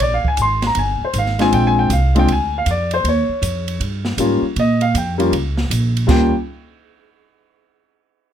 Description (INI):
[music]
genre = jazz piano trio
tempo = 158 BPM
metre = 4/4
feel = swing 65% on 8ths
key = Eb mixolydian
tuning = A4 = 441 Hz
[part]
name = warm grand piano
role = melody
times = 0.0-6.3 s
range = G3 to C6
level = -17 LUFS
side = left 2 dB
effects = none
[part]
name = upright bass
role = bass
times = 0.0-6.3 s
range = G1 to Bb2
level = -19 LUFS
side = right 1 dB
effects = none
[part]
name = open jazz drum kit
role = drums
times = 0.0-6.2 s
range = crash cymbal, hi-hat, kick drum, ride cymbal, snare drum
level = -23 LUFS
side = right 2 dB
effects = none
[sound]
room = light reverb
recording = close, detailed microphones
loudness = -15 LUFS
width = side -9 dB against mid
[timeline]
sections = 0.0-6.1 A section; 6.1-7.6 B section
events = none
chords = 0.0 Bb9; 3.0 Eb9; 6.1 Eb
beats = | 0.00 0.38 0.76 1.14 | 1.52 1.90 2.28 2.66 | 3.04 3.42 3.80 4.18 | 4.56 4.94 5.32 5.70 | 6.08